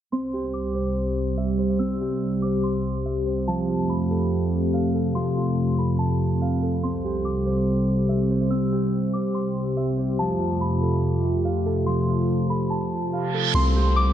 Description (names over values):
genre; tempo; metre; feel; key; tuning
hip hop; 143 BPM; 4/4; half-time; C major; A4 = 440 Hz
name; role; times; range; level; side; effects
soft synth bell; melody; 0.1-14.1 s; A5 to E6; -32 LUFS; left 1 dB; chorus, low-pass filter, tape echo
hollow soft pad; sustained chords; 0.1-14.1 s; C2 to G4; -23 LUFS; left 1 dB; chorus
Celtic harp; arpeggios; 0.1-14.1 s; F3 to F5; -28 LUFS; right 3 dB; low-pass filter, tape echo
reverse cymbal and downlifter; sound effects; 13.3-14.1 s; none; -27 LUFS; right 8 dB; none
long sustained 808-style bass; bass; 13.5-14.1 s; C2; -19 LUFS; equal; none
room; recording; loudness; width
moderate lush hall reverb, RT60 2.6 s; dark, warm production, low-pass filter, nothing above 10.5 kHz; -21 LUFS; side -10 dB against mid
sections
0.1-13.5 A section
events
filter sweep 0.1-13.5; reverse cymbal 13.3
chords
0.1 C; 3.5 F; 6.8 C; 10.2 F; 13.5 C5